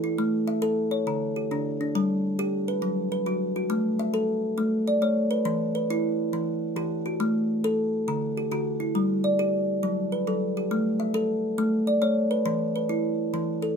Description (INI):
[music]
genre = southern african traditional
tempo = 137 BPM (dotted quarters)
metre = 12/8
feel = straight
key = A mixolydian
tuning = A4 = 439 Hz
[part]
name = kalimba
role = solo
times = 0.0-13.8 s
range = D3 to E5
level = -24 LUFS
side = equal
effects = none
[sound]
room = moderate studio reverb, RT60 0.6 s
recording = band playing live in one room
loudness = -24 LUFS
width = side -6 dB against mid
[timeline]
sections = 0.0-3.7 A section; 3.7-13.8 B section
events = none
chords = 0.2 A; 1.1 Dsus4; 1.9 G; 2.8 F#sus4; 3.7 A; 5.5 Em; 7.2 F#m/A; 8.1 D; 9.0 G5; 9.8 F#m; 10.7 A; 12.5 E5